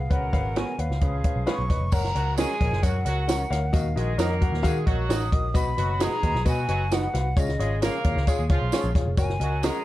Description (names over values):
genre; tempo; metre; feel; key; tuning
uptempo 1960s-style soul; 132 BPM; 4/4; straight; F# major; A4 = 440 Hz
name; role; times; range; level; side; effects
breathy mellow silver concert flute; melody; 0.0-9.8 s; D#5 to D#6; -31 LUFS; left 1 dB; none
vintage muted picked electric bass; bass; 0.0-9.7 s; E1 to D#3; -26 LUFS; equal; none
clear horn section; second line; 0.1-9.8 s; E#3 to A#4; -34 LUFS; right 2 dB; none
warm concert grand piano; accompaniment; 0.1-9.8 s; B2 to F#5; -31 LUFS; left 4 dB; none
compact cocktail drum kit; drums; 0.1-9.7 s; crash cymbal, hi-hat, kick drum, snare drum; -26 LUFS; equal; none
electric guitar through a small old amp; stabs; 0.6-9.8 s; B3 to D#5; -35 LUFS; right 6 dB; ensemble chorus
tambourine; percussion; 1.9-9.7 s; none; -41 LUFS; right 13 dB; none
room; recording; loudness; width
small room ambience; dark, warm production; -22 LUFS; side -15 dB against mid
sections
0.0-1.9 A section; 1.9-9.8 B section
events
none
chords
0.1 C#7sus4; 1.0 C#7; 1.9 F#; 3.7 D#m; 5.6 B; 7.4 C#; 9.2 F#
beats
| 0.11 0.56 1.01 1.47 | 1.92 2.38 2.83 3.29 | 3.74 4.19 4.64 5.10 | 5.55 6.00 6.46 6.91 | 7.36 7.82 8.27 8.72 | 9.18 9.63